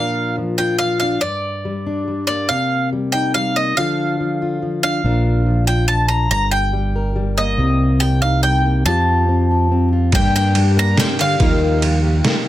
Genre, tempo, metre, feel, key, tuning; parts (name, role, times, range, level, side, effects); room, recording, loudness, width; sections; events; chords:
indie folk with a building arrangement; 142 BPM; 3/4; straight; A4 = 440 Hz
bowl-back mandolin; melody; 0.0-12.4 s; D5 to Bb5; -20 LUFS; equal
fingerpicked plugged-in steel-string acoustic guitar; accompaniment; 0.0-12.5 s; G2 to Bb4; -20 LUFS; left 2 dB
picked electric bass; bass; 5.0-12.2 s; G1 to G2; -17 LUFS; right 1 dB
picked twelve-string acoustic guitar; accompaniment; 10.1-12.5 s; Eb3 to G4; -24 LUFS; left 6 dB; ensemble chorus
trip hop sampler-style drum kit; drums; 10.1-12.3 s; kick drum, ride cymbal, snare drum; -19 LUFS; right 1 dB
light reverb; -15 LUFS; side -14 dB against mid
0.0-10.1 A section; 10.1-12.5 B section
0.0 Bb; 1.2 Gm; 2.5 Cm7; 3.8 Dm; 5.0 Bb; 6.3 Gm; 7.6 Cm7; 8.9 Fadd9; 10.1 Gm; 11.4 Ebadd9